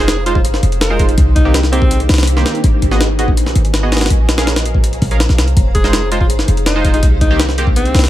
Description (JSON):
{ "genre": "drum and bass, jungle", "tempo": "164 BPM", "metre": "4/4", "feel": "straight", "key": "F minor", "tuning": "A4 = 440 Hz", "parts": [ { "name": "clear alto saxophone", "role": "melody", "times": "0.0-2.0, 5.7-8.0 s", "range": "C4 to Bb4", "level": "-21 LUFS", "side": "equal", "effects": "dub echo" }, { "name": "granular cloud pad", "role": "sustained chords", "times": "0.0-8.1 s", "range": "Bb3 to Bb5", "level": "-22 LUFS", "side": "left 2 dB", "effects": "built-in reverb" }, { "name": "band-passed chord stab", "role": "stabs", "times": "0.0-7.7 s", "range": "Eb3 to F5", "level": "-21 LUFS", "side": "right 3 dB", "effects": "chorus, dub echo" }, { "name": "warm 808-style bass", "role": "bass", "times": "0.0-8.1 s", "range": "F1 to C2", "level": "-15 LUFS", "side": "equal", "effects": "none" }, { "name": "jungle sampler-style drum kit", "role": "drums", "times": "0.1-8.1 s", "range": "hi-hat, kick drum, snare drum", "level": "-14 LUFS", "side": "equal", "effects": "none" } ], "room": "little or no reverb", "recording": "none", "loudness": "-11 LUFS", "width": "side -14 dB against mid", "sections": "0.0-8.1 A section", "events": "none", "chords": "0.0 Fm7; 1.2 Cm7; 2.6 Abm7; 4.1 Bbm7; 5.6 Fm7; 7.0 Cm7", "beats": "0.08 0.45 0.81 | 1.18 1.54 1.91 2.27 | 2.64 3.01 3.37 3.74 | 4.10 4.47 4.84 5.20 | 5.57 5.93 6.30 6.67 | 7.03 7.40 7.76" }